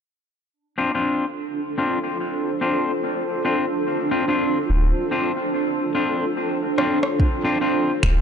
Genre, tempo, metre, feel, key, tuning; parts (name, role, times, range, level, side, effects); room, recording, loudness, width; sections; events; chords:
ambient dub; 72 BPM; 4/4; swing 60% on 16ths; D minor; A4 = 441 Hz
granular cloud pad; sustained chords; 1.3-8.2 s; D4 to C5; -24 LUFS; right 2 dB; built-in reverb
electric guitar at the edge of break-up; stabs; 0.8-7.9 s; C4 to F4; -23 LUFS; left 3 dB; low-pass filter, dub echo
soft dub sub bass; bass; 4.7-8.2 s; D1; -18 LUFS; equal
electronic rim click and finger snaps; drums; 6.8-8.2 s; -26 LUFS; equal; overdrive, low-pass filter on snare, studio reverb
electronic kick drum; drums; 7.2-8.2 s; -19 LUFS; equal; overdrive, studio reverb
moderate huge ambient reverb, RT60 7.3 s; nothing above 10.8 kHz; -20 LUFS; side -7 dB against mid
0.5-7.2 A section; 7.2-8.2 B section
drum fill 6.8-7.2
0.5 Dm7